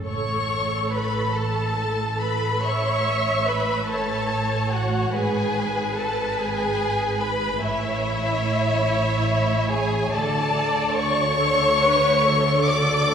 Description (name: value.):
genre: classical, slow romantic movement for string orchestra.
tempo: 48 BPM (dotted quarters).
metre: 12/8.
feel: rubato.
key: unclear.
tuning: A4 = 440 Hz.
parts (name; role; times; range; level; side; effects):
rich studio viola section; accompaniment; 0.0-13.1 s; A4 to E5; -28 LUFS; right 1 dB; none.
rich symphonic double bass section; bass; 0.0-13.1 s; G#1 to D2; -29 LUFS; right 2 dB; none.
warm symphonic cello section; bass; 0.0-13.1 s; G#2 to D3; -28 LUFS; right 2 dB; none.
warm symphonic violin section; melody; 0.1-13.1 s; E5 to D6; -25 LUFS; left 3 dB; none.
warm symphonic violin section; second line; 0.1-13.1 s; E4 to D5; -25 LUFS; left 1 dB; none.
room: wet church reverb, RT60 3.0 s.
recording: recorded in a church or concert hall.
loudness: -20 LUFS.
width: side -7 dB against mid.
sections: 0.0-13.1 A section.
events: none.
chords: 0.1 A; 5.2 G#m; 7.6 A; 10.1 D5.